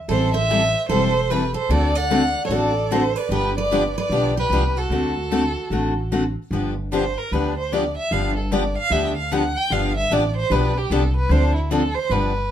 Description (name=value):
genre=acoustic string swing (jazz manouche)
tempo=150 BPM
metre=4/4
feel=swing 62% on 8ths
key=G mixolydian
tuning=A4 = 439 Hz
part: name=warm violin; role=melody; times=0.1-12.5 s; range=E4 to G5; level=-23 LUFS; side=right 2 dB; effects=none
part: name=picked steel-string acoustic guitar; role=second line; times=0.1-6.1 s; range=F#4 to D5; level=-27 LUFS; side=right 4 dB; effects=none
part: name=picked steel-string acoustic guitar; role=accompaniment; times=0.1-12.3 s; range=D3 to A4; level=-23 LUFS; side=left 3 dB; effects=none
part: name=upright bass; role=bass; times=0.1-12.5 s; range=E1 to D2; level=-23 LUFS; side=equal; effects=none
room=moderate studio reverb, RT60 0.6 s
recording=minimal, uncompressed stereo recording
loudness=-18 LUFS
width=side -10 dB against mid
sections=0.0-6.5 A section; 6.5-12.5 B section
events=violin solo 6.5-12.5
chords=0.1 Am7; 1.7 D7; 3.3 G7; 4.9 D7; 6.5 G7; 11.3 Dm7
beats=| 0.09 0.49 0.89 1.29 | 1.70 2.10 2.50 2.90 | 3.30 3.70 4.10 4.50 | 4.91 5.31 5.71 6.11 | 6.51 6.91 7.31 7.71 | 8.11 8.51 8.91 9.31 | 9.71 10.11 10.50 10.90 | 11.30 11.70 12.10 12.50